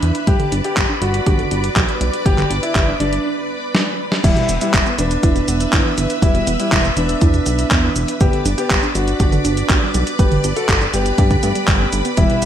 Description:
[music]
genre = italo disco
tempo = 121 BPM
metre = 4/4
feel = straight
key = unclear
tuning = A4 = 440 Hz
[part]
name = dark baby grand piano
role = melody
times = 0.0-12.4 s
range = G3 to B4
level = -21 LUFS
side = equal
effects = digital delay
[part]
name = string machine, full ensemble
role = sustained chords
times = 0.0-12.5 s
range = B4 to F#6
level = -24 LUFS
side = equal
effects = ensemble chorus
[part]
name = wide unison pluck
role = arpeggios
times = 0.0-12.5 s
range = B2 to G4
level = -25 LUFS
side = right 3 dB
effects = digital delay
[part]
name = chorused synth bass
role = bass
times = 0.0-12.5 s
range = E1 to G2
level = -20 LUFS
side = equal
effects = none
[part]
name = clean 12-bit digital drum machine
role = drums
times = 0.0-12.5 s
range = cabasa, crash cymbal, handclaps, hi-hat, snare drum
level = -21 LUFS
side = equal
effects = studio reverb, gated reverb
[part]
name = electronic kick drum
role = drums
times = 0.3-12.3 s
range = none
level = -17 LUFS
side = equal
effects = overdrive, studio reverb
[part]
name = mellow synth brass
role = stabs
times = 12.2-12.5 s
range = G3 to B4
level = -23 LUFS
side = left 2 dB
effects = chorus
[sound]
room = moderate plate reverb, RT60 1.9 s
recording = bright 1980s-style digital production, vinyl crackle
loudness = -14 LUFS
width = side -10 dB against mid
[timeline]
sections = 0.0-4.2 A section; 4.2-12.5 B section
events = break 3.2-4.2; drum fill 3.7-4.2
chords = 0.3 G; 4.2 Em; 8.2 G

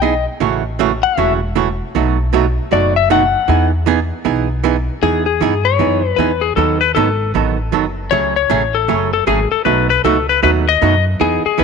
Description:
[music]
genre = country, western swing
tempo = 155 BPM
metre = 4/4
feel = swing 64% on 8ths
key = E major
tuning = A4 = 441 Hz
[part]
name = clean lap steel guitar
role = melody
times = 0.0-11.6 s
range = G#4 to F#5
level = -16 LUFS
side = left 11 dB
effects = none
[part]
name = archtop guitar, miked and amplified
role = accompaniment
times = 0.0-11.6 s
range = B2 to A4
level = -17 LUFS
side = right 12 dB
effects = none
[part]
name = upright bass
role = bass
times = 0.0-11.6 s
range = E1 to G2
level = -19 LUFS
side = equal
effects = none
[sound]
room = moderate plate reverb, RT60 2.8 s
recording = 1960s-style stereo with parts hard left and right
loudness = -13 LUFS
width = side -5 dB against mid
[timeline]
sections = 0.0-5.0 A section; 5.0-11.6 B section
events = electric slide guitar solo 0.0-5.0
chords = 0.4 A6; 1.9 B7; 3.5 Emaj7; 6.6 B7; 8.1 F#madd9; 9.7 B7

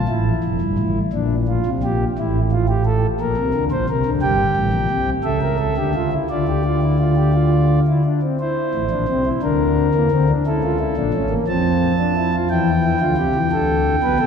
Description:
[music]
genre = classical, baroque-style 3-part fugue for pipe organ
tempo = 58 BPM (dotted quarters)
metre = 6/8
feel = straight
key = D minor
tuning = A4 = 441 Hz
[part]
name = pipe organ, principal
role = solo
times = 0.0-14.3 s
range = F1 to A5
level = -16 LUFS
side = equal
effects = none
[sound]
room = wet church reverb, RT60 2.8 s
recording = recorded in a church or concert hall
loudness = -16 LUFS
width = side -7 dB against mid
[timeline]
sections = 0.1-8.4 A section; 8.4-14.3 B section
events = none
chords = 0.1 A5; 1.1 Gm/Bb; 2.2 A5; 3.2 Bb; 4.2 Gmadd11; 5.2 A7/C#; 6.3 Dm; 8.4 D5; 9.4 C9/D; 10.5 A/C#; 11.5 Dm/F; 12.5 Cadd9; 13.5 Am11

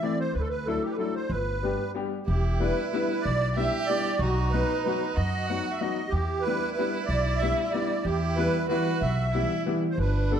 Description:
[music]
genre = musette waltz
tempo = 187 BPM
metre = 3/4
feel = straight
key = E minor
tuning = A4 = 442 Hz
[part]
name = musette accordion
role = melody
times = 0.0-10.4 s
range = F#4 to F#5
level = -29 LUFS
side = right 3 dB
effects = none
[part]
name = clear upright piano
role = accompaniment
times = 0.0-10.4 s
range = D3 to G4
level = -30 LUFS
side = left 3 dB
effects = none
[part]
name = upright bass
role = bass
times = 0.3-10.4 s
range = E1 to F#2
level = -28 LUFS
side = equal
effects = none
[part]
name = clear violin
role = second line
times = 2.3-10.4 s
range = D4 to G4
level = -34 LUFS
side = right 4 dB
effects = none
[sound]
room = moderate recital hall reverb, RT60 1.3 s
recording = dark, warm production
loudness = -24 LUFS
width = side -8 dB against mid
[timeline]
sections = 0.0-2.3 A section; 2.3-10.0 B section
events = none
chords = 0.3 Dadd9; 1.3 G; 2.3 Em7; 4.2 B; 6.1 Em7; 8.1 Em

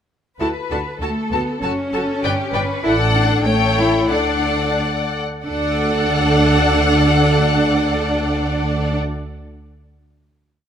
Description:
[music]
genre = quick classical-period movement for string orchestra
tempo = 86-99 BPM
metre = 2/4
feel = straight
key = D major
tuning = A4 = 441 Hz
[part]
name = warm studio violin section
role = melody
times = 0.4-9.0 s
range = F#5 to A5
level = -22 LUFS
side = left 5 dB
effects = none
[part]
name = rich studio violin section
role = second line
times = 0.4-9.0 s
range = F#4 to D5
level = -26 LUFS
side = left 3 dB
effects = none
[part]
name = bright studio viola section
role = accompaniment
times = 0.4-9.0 s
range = F#4 to D5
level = -24 LUFS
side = equal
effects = none
[part]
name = rich studio cello section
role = bass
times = 0.4-9.0 s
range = A3 to E4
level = -21 LUFS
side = right 1 dB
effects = none
[part]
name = warm studio double bass section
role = bass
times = 0.4-9.0 s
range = F#1 to D2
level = -21 LUFS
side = right 2 dB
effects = none
[sound]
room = moderate recital hall reverb, RT60 1.6 s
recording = none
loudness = -15 LUFS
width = side -8 dB against mid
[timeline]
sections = 0.4-5.5 A section; 5.5-8.2 final chord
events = slowing down 2.2-5.5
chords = 0.4 D; 1.6 F#m; 2.2 G; 2.8 D/A; 3.5 A7; 4.1 D

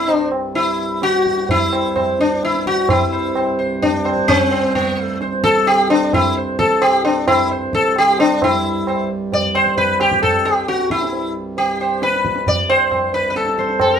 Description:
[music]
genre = indian classical, Hindustani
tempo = 131 BPM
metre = 3/4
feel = straight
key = C raga yaman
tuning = A4 = 441 Hz
[part]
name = sitar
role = melody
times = 0.0-14.0 s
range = B3 to D5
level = -16 LUFS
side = left 1 dB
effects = none
[part]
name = pedal harmonium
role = drone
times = 0.0-14.0 s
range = C2 to G2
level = -26 LUFS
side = right 3 dB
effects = none
[part]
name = tabla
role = percussion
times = 0.1-14.0 s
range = none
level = -21 LUFS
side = right 1 dB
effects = none
[sound]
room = moderate studio reverb, RT60 0.5 s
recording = band playing live in one room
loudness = -14 LUFS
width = side -8 dB against mid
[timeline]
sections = 0.0-8.4 A section; 8.4-14.0 B section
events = speeding up 0.0-14.0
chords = none

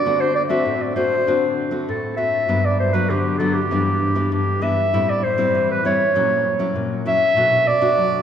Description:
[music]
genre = samba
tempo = 98 BPM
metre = 4/4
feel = straight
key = unclear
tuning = A4 = 438 Hz
[part]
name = warm clarinet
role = melody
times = 0.0-8.2 s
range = G4 to E5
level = -18 LUFS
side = equal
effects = none
[part]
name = nylon-string guitar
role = accompaniment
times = 0.0-8.2 s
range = G2 to F#4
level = -21 LUFS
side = left 2 dB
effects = none
[sound]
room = wet church reverb, RT60 3.7 s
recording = recorded in a church or concert hall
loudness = -17 LUFS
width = side -8 dB against mid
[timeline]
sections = 0.0-8.2 A section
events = none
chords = 0.1 D7; 2.5 Gmaj7; 3.7 Em7/G; 4.9 Am7; 6.2 F#7/A#; 7.4 Bm7

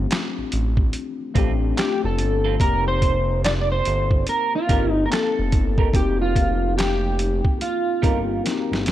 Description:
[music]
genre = R&B, neo-soul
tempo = 72 BPM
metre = 4/4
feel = swing 63% on 16ths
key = unclear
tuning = A4 = 440 Hz
[part]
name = tine electric piano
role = accompaniment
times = 0.0-8.9 s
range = A3 to A4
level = -27 LUFS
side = left 7 dB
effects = analog chorus
[part]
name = smooth synth bass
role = bass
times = 0.0-8.9 s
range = F1 to A1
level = -23 LUFS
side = equal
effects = none
[part]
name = boom bap sampler-style drum kit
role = drums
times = 0.1-8.9 s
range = handclaps, hi-hat, kick drum, snare drum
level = -22 LUFS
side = equal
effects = none
[part]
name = electric guitar through a small old amp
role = second line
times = 1.3-8.2 s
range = C4 to Bb4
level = -32 LUFS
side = right 7 dB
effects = spring reverb, analog delay
[part]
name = electric guitar at the edge of break-up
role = melody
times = 1.8-8.4 s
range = F4 to D5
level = -23 LUFS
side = right 1 dB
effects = analog chorus
[sound]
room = digital ambience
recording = none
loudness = -18 LUFS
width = side -13 dB against mid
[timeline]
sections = 0.0-8.9 A section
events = drum fill 8.4-8.9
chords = 0.0 G9sus4; 2.6 F9sus4

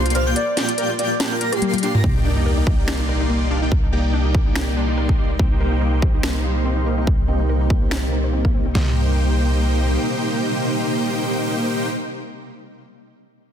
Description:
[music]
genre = future bass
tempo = 143 BPM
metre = 4/4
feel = swing 56% on 16ths, half-time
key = C minor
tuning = A4 = 440 Hz
[part]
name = warm velvety synth lead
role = melody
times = 0.0-2.0 s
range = G4 to D5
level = -25 LUFS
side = equal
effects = chorus, sidechain pumping, ping-pong delay
[part]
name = airy dreamy lead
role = arpeggios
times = 0.0-2.0 s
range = F6 to C7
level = -29 LUFS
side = equal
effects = chorus, phaser, sidechain pumping, ping-pong delay
[part]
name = dense compressed supersaw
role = riff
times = 0.0-11.9 s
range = Bb3 to C6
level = -23 LUFS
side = equal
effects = sidechain pumping, low-pass filter, ping-pong delay
[part]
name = warm 808-style bass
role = bass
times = 0.0-10.0 s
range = C2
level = -20 LUFS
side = equal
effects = sidechain pumping
[part]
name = wide unison pluck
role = arpeggios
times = 0.1-8.9 s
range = Bb3 to C5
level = -31 LUFS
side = left 2 dB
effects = sidechain pumping, ping-pong delay
[part]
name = trap drum kit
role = drums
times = 0.1-8.0 s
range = finger snaps, hi-hat, rim click, snare drum, toms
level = -24 LUFS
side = left 1 dB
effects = soft clipping on snare
[part]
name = shimmering ambient pad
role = sustained chords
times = 3.6-11.9 s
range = C3 to D5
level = -31 LUFS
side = equal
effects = chorus, built-in reverb, sidechain pumping
[part]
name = dubstep drum kit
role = drums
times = 2.0-8.9 s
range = kick drum, snare drum, toms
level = -20 LUFS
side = equal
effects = none
[part]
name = sub drop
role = sound effects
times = 2.0-3.7 s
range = none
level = -28 LUFS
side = equal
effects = none
[sound]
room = light reverb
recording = dense, heavily limited modern master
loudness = -17 LUFS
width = side -9 dB against mid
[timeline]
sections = 0.0-2.0 A section; 2.0-8.8 B section; 8.8-12.1 C section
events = drop 0.0-2.0; drum fill 1.6-2.0; impact 2.0-3.7; filter sweep on supersaw synth 2.0-8.8; filter sweep on synth arpeggio sound 2.0-8.8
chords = 0.0 Gm7/C; 2.0 Ebmaj7/C; 5.4 Cm7

